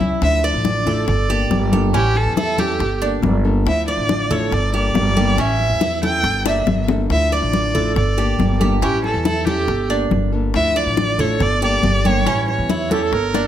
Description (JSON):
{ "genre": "latin, Cuban son and guajira", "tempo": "140 BPM", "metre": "4/4", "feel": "straight", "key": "D minor", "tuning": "A4 = 440 Hz", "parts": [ { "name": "bright trumpet", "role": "second line", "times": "0.0-0.2, 12.9-13.5 s", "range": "E4 to Bb4", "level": "-26 LUFS", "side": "right 5 dB", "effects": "none" }, { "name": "nylon-string guitar", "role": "accompaniment", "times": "0.0-13.5 s", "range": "D3 to A4", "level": "-25 LUFS", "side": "left 4 dB", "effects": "none" }, { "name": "Cuban tres", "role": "arpeggios", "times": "0.0-13.5 s", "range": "C#4 to D5", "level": "-24 LUFS", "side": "right 6 dB", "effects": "none" }, { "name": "upright bass", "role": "bass", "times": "0.0-13.5 s", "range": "G1 to E2", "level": "-21 LUFS", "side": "equal", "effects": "none" }, { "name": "bongos", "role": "percussion", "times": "0.0-13.4 s", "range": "none", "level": "-26 LUFS", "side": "left 7 dB", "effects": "none" }, { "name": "congas", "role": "percussion", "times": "0.0-13.5 s", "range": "none", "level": "-23 LUFS", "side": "left 2 dB", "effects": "none" }, { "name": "warm violin", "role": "melody", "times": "0.2-13.3 s", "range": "G4 to G5", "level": "-21 LUFS", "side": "right 1 dB", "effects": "slapback echo" } ], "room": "light reverb", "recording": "close, detailed microphones", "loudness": "-15 LUFS", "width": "side -10 dB against mid", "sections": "0.2-13.5 A section", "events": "drum fill 6.5-7.1", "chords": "0.2 Dmadd9; 1.1 Gmadd9; 1.9 A7; 2.8 Gmadd9; 3.7 Dmadd9; 4.5 Gmadd9; 5.4 A7; 6.2 Gmadd9; 7.1 Dmadd9; 8.0 Gmadd9; 8.8 A7; 9.7 Gmadd9; 10.5 Dmadd9; 11.4 Gmadd9; 12.3 A7" }